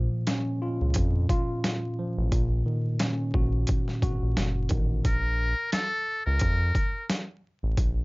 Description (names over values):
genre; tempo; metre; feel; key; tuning
hip hop, boom-bap hip-hop; 88 BPM; 4/4; swing 56% on 16ths; Bb harmonic minor; A4 = 438 Hz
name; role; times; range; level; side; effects
tine electric piano; accompaniment; 0.0-5.1 s; Bb2 to Gb4; -28 LUFS; equal; overdrive, fast stereo tremolo, cassette tape
round analog bass; bass; 0.0-8.0 s; Gb1 to F2; -26 LUFS; equal; none
boom bap sampler-style drum kit; drums; 0.3-8.0 s; hi-hat, kick drum, snare drum; -27 LUFS; equal; overdrive
trumpet with metal mute; melody; 5.1-7.1 s; A4 to Bb4; -28 LUFS; left 1 dB; slapback echo
room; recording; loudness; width
light reverb; vinyl crackle, nothing above 7.5 kHz; -24 LUFS; side -25 dB against mid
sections
0.0-8.0 A section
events
none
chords
0.0 Bbm; 2.3 Ebm7/Bb; 5.0 Bb5